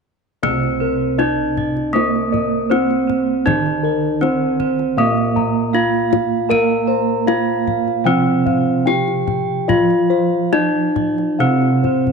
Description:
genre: Javanese gamelan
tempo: 78 BPM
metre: 4/4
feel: uneven beats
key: C slendro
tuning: A4 = 440 Hz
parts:
  - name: gamelan-type bronze metallophone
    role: melody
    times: 0.4-12.1 s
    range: Bb3-25c to Bb4-25c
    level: -18 LUFS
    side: equal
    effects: none
  - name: gamelan-type bronze metallophone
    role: accompaniment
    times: 0.4-12.1 s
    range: C3 to Bb3-25c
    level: -22 LUFS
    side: right 11 dB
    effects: none
  - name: gamelan-type bossed gongs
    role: arpeggios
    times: 0.4-12.1 s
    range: Bb4-25c to Bb5-25c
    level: -24 LUFS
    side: left 9 dB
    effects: none
  - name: gamelan-type bronze metallophone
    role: arpeggios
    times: 0.4-12.1 s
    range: Bb4-25c to Bb5-25c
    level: -24 LUFS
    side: right 10 dB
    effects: none
  - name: gamelan-type bossed gongs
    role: bass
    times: 0.4-12.1 s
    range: C2 to Bb4-25c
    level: -24 LUFS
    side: left 2 dB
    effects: none
  - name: kendang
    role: percussion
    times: 0.4-12.1 s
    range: none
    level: -23 LUFS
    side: left 12 dB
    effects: none
room: moderate plate reverb, RT60 2.6 s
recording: 1960s-style stereo with parts hard left and right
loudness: -15 LUFS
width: side -5 dB against mid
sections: 0.4-12.1 A section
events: none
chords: none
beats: | 0.43 1.19 1.95 2.71 | 3.47 4.23 4.99 5.75 | 6.51 7.28 8.06 8.87 | 9.69 10.54 11.40

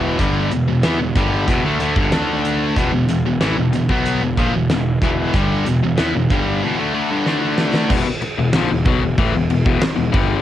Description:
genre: hard rock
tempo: 93 BPM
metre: 4/4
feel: straight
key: E minor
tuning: A4 = 441 Hz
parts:
  - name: cranked stack guitar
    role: riff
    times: 0.0-10.4 s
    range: E2 to D4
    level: -20 LUFS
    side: left 6 dB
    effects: overdrive, cassette tape
  - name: high-gain distorted guitar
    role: riff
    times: 0.0-7.9 s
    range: E2 to D4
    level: -21 LUFS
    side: right 6 dB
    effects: distortion, cassette tape
  - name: fuzz picked electric bass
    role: bass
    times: 0.0-10.4 s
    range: E1 to E2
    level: -22 LUFS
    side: right 1 dB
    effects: overdrive
  - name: huge arena drum kit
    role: drums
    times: 0.2-10.3 s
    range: crash cymbal, hi-hat, kick drum, snare drum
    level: -21 LUFS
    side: right 1 dB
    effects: cassette tape
room: light reverb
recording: home recording on cassette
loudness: -15 LUFS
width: side -12 dB against mid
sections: 0.0-7.9 A section; 7.9-10.4 B section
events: drum fill 7.3-7.9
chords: 0.0 Em; 2.1 D5; 2.8 Em; 7.3 D5; 7.9 Em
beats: | 0.18 0.83 1.47 2.12 | 2.76 3.41 4.05 4.70 | 5.34 5.98 6.62 7.26 | 7.91 8.55 9.19 9.82

